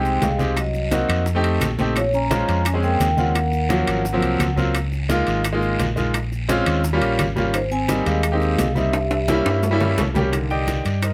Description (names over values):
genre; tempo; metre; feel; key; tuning
Afro-Cuban jazz; 172 BPM; 4/4; straight; unclear; A4 = 440 Hz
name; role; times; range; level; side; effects
vibraphone with medium mallets; melody; 0.0-4.5, 7.5-9.9 s; C5 to Bb5; -28 LUFS; equal; slapback echo
trombone with bucket mute; second line; 0.0-4.5, 7.5-9.9 s; Eb3 to Db4; -30 LUFS; equal; none
clear baby grand piano; accompaniment; 0.0-11.1 s; D3 to G5; -25 LUFS; equal; none
fingered electric bass; bass; 0.0-11.1 s; Ab1 to G2; -25 LUFS; equal; none
congas; percussion; 0.0-11.1 s; none; -30 LUFS; equal; none
maracas; percussion; 0.1-11.1 s; none; -41 LUFS; equal; none
bongos; percussion; 0.2-11.1 s; none; -34 LUFS; equal; none
guiro; percussion; 0.2-11.1 s; none; -37 LUFS; equal; none
timbales; percussion; 0.2-11.1 s; none; -30 LUFS; equal; none
claves; percussion; 0.6-11.1 s; none; -35 LUFS; equal; none
room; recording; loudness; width
light reverb; close, detailed microphones; -20 LUFS; mono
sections
0.0-10.3 A section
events
drum fill 8.9-10.3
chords
0.0 Fm9; 0.6 Cm7b5; 1.3 F7; 2.0 Bbm7; 3.4 Ebm9; 4.1 Ab13; 4.7 Db6; 6.1 Bbm7; 6.8 Eb9; 7.5 Abmaj7; 8.9 C7b9; 10.3 Cm9